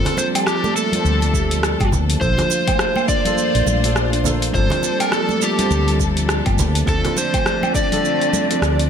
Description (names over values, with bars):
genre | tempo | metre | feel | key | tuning
organic downtempo | 103 BPM | 4/4 | swing 60% on 16ths | G minor | A4 = 441 Hz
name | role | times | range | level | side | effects
overdriven slide guitar | melody | 0.0-8.9 s | G4 to D5 | -22 LUFS | right 1 dB | digital delay
felt-muted upright piano | accompaniment | 0.0-8.9 s | F3 to C5 | -27 LUFS | right 1 dB | sidechain pumping, ping-pong delay
rich studio string section | sustained chords | 0.0-8.9 s | D3 to C5 | -26 LUFS | left 2 dB | sidechain pumping
handpan | arpeggios | 0.0-8.9 s | F3 to D4 | -25 LUFS | right 2 dB | vintage 12-bit sampler grit, ping-pong delay
deep house drum kit | drums | 0.1-8.9 s | hi-hat, rim click, shaker, woodblock | -23 LUFS | right 1 dB | none
congas | percussion | 0.1-8.5 s | none | -27 LUFS | right 1 dB | none
woody fretless electric bass | bass | 1.0-8.9 s | G1 to D2 | -19 LUFS | left 1 dB | tube saturation
electronic kick drum | drums | 1.3-7.9 s | none | -23 LUFS | left 1 dB | none
room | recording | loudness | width
light reverb, small room ambience | none | -16 LUFS | side -8 dB against mid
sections
0.0-8.9 A section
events
none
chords
0.0 Gm11; 2.2 Bbmaj7; 4.5 Gm11; 6.9 Dm7